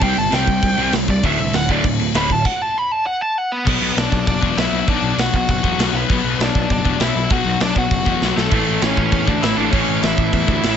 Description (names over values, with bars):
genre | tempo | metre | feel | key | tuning
punk rock | 198 BPM | 4/4 | straight | D mixolydian | A4 = 438 Hz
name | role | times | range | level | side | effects
bluesy overdriven lead guitar | melody | 0.0-10.8 s | A3 to B5 | -21 LUFS | equal | distortion
crunchy overdriven guitar | riff | 0.0-10.8 s | D2 to C4 | -21 LUFS | left 12 dB | none
distorted electric guitar | riff | 0.0-2.4, 8.5-10.8 s | D2 to C4 | -22 LUFS | right 13 dB | distortion
fuzz picked electric bass | bass | 0.0-10.7 s | D1 to E2 | -23 LUFS | right 1 dB | overdrive
big rock drum kit | drums | 0.0-10.7 s | crash cymbal, kick drum, snare drum | -20 LUFS | equal | none
room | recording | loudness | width
light reverb | nothing above 7.9 kHz | -15 LUFS | side -8 dB against mid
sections
0.0-3.7 A section; 3.7-10.8 B section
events
lead electric guitar solo 0.0-3.7; stop 2.4-3.7; drum fill 8.2-8.5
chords
0.0 C5; 1.2 D5; 2.4 N.C.; 3.7 Bm; 8.5 A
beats
| 0.01 0.32 0.62 0.93 | 1.23 1.53 1.84 2.14 | 2.45 2.75 3.06 3.36 | 3.66 3.97 4.27 4.58 | 4.88 5.18 5.49 5.79 | 6.09 6.39 6.70 7.00 | 7.30 7.61 7.91 8.21 | 8.52 8.82 9.12 9.42 | 9.73 10.03 10.33 10.63